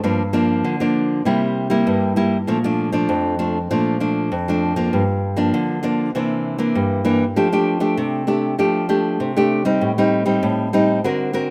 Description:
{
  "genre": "samba",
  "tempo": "98 BPM",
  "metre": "4/4",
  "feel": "straight",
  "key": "unclear",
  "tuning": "A4 = 442 Hz",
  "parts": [
    { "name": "nylon-string guitar", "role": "solo", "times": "0.0-11.5 s", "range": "F2 to Bb4", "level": "-19 LUFS", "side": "equal", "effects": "none" }
  ],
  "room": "light reverb",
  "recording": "rough home demo mix",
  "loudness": "-19 LUFS",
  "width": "mono",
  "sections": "0.0-2.5 A section; 2.5-11.5 B section",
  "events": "none",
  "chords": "0.0 Gm7; 1.3 C7; 2.5 Bbmaj7; 4.9 Gm7; 6.1 C9; 7.4 F69; 9.8 Am7b5",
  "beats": "| 0.04 0.65 1.26 1.87 | 2.48 3.09 3.70 4.31 | 4.92 5.54 6.15 6.76 | 7.37 7.98 8.59 9.20 | 9.81 10.43 11.04"
}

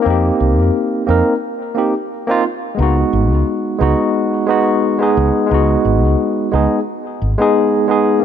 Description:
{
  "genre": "sunset chillout",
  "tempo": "88 BPM",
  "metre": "4/4",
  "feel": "swing 54% on 16ths",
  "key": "unclear",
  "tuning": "A4 = 439 Hz",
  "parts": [
    { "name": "barky tine electric piano", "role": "accompaniment", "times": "0.0-8.2 s", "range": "Ab3 to Bb4", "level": "-14 LUFS", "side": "equal", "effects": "auto-pan, ping-pong delay" },
    { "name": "fretless electric bass", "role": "bass", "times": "0.1-7.3 s", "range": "Ab1 to F2", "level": "-15 LUFS", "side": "equal", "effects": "tube saturation, analog chorus" }
  ],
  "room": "moderate plate reverb, RT60 3.1 s",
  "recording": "none",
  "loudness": "-13 LUFS",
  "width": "side -9 dB against mid",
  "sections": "0.0-8.2 A section",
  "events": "none",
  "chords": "0.0 F9sus4; 2.8 Db9sus4",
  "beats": "| 0.06 0.74 1.42 2.10 | 2.78 3.46 4.15 4.83 | 5.51 6.19 6.87 7.56 | 8.24"
}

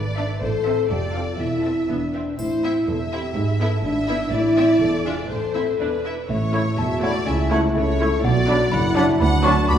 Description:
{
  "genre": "cinematic, playful, whimsical film cue",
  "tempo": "123 BPM",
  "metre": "2/4",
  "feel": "straight",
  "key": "A minor, A major from 6.3 s",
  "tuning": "A4 = 438 Hz",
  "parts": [
    { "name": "rich studio violin section", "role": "second line", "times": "0.0-9.8 s", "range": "B4 to B5", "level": "-28 LUFS", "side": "left 1 dB", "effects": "none" },
    { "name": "mellow French horn section", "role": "sustained chords", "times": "0.0-9.8 s", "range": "D4 to A4", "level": "-22 LUFS", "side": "left 2 dB", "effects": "none" },
    { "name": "clear studio cello section", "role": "bass", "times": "0.0-9.8 s", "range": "D2 to C#3", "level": "-27 LUFS", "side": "right 2 dB", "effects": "none" },
    { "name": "clear studio double bass section", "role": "bass", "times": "0.0-9.8 s", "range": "E1 to D2", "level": "-26 LUFS", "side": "right 2 dB", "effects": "none" },
    { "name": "rich studio violin section", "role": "melody", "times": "0.2-9.6 s", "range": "B4 to A5", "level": "-35 LUFS", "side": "left 3 dB", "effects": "none" },
    { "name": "rich symphonic viola section", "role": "accompaniment", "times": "0.2-9.6 s", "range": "F#3 to B4", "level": "-29 LUFS", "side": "right 1 dB", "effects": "none" },
    { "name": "triangle", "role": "percussion", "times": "2.4-3.3 s", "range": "none", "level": "-45 LUFS", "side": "right 1 dB", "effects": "none" },
    { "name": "small celesta", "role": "melody", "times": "5.8-9.8 s", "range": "D5 to D6", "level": "-27 LUFS", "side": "left 2 dB", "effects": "none" },
    { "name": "mellow tuba", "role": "bass", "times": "6.3-9.8 s", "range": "E1 to D2", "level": "-26 LUFS", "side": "right 2 dB", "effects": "none" },
    { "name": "clear clarinet", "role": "second line", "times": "6.5-9.5 s", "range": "D4 to E4", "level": "-31 LUFS", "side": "equal", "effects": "none" },
    { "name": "mellow flute section", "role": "second line", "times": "6.5-9.5 s", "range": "B5 to C#6", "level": "-36 LUFS", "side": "left 1 dB", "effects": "none" },
    { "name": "warm oboe", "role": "second line", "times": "6.5-9.5 s", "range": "C#5 to D5", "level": "-31 LUFS", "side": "right 2 dB", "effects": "none" },
    { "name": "mellow bassoon", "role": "accompaniment", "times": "6.5-9.5 s", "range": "F#3 to A3", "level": "-32 LUFS", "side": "equal", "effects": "none" }
  ],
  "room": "wet scoring stage reverb, RT60 2.0 s",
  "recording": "heard from further back in the room",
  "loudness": "-18 LUFS",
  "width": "side -9 dB against mid",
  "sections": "0.0-6.3 A section; 6.3-9.8 B section",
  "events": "none",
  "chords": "0.4 Am; 0.9 F; 1.4 Am/E; 1.9 E5; 2.4 Am; 3.4 E7/G#; 4.3 Am; 4.8 E7b9; 5.3 Am; 6.3 A; 7.3 A/C#; 8.2 Bm; 9.2 Bm/D",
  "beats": "| 0.41 0.90 | 1.39 1.89 | 2.38 2.88 | 3.36 3.84 | 4.33 4.81 | 5.30 5.80 | 6.29 6.78 | 7.27 7.76 | 8.24 8.72 | 9.21 9.69"
}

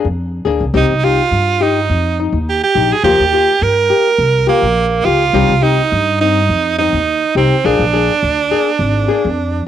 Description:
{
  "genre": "highlife guitar band",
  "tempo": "104 BPM",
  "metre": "4/4",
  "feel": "swing 53% on 16ths",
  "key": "C minor",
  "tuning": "A4 = 442 Hz",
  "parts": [
    { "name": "nylon-string guitar", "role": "accompaniment", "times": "0.0-9.3 s", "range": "F3 to Ab4", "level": "-16 LUFS", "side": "left 8 dB", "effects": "cassette tape" },
    { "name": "upright bass", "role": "bass", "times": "0.0-9.7 s", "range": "Ab1 to G2", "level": "-17 LUFS", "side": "equal", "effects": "none" },
    { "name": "edgy tenor saxophone", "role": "melody", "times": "0.8-9.7 s", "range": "Bb3 to Bb4", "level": "-14 LUFS", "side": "right 6 dB", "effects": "cassette tape" }
  ],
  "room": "light reverb",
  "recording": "home recording on cassette",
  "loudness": "-11 LUFS",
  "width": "side -10 dB against mid",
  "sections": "0.0-9.7 A section",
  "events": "none",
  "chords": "0.0 Bb7; 0.7 Cm; 3.0 Ebadd9; 5.4 Cm; 7.7 Bb7",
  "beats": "0.17 | 0.75 1.32 1.90 2.47 | 3.05 3.62 4.20 4.78 | 5.35 5.93 6.50 7.08 | 7.66 8.23 8.81 9.39"
}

